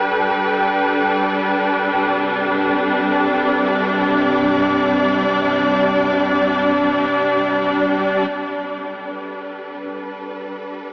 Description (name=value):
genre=ambient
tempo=free time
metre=none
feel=none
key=G major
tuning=A4 = 436 Hz
part: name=clear symphonic string section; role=sustained chords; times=0.0-10.9 s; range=G2 to D5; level=-16 LUFS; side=equal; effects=none
part: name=wind-like tuned noise texture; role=texture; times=0.0-8.3 s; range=G5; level=-26 LUFS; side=equal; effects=built-in reverb
room=wet huge ambient reverb, RT60 8.3 s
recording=dreamy mix soaked in reverb, AM radio sound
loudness=-15 LUFS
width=side -27 dB against mid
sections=0.0-8.3 A section; 8.3-10.9 B section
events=fade-in on string section 0.0-8.3; fade-out on synth texture 0.0-8.3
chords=0.0 G; 1.7 Csus2/G; 8.3 Gadd9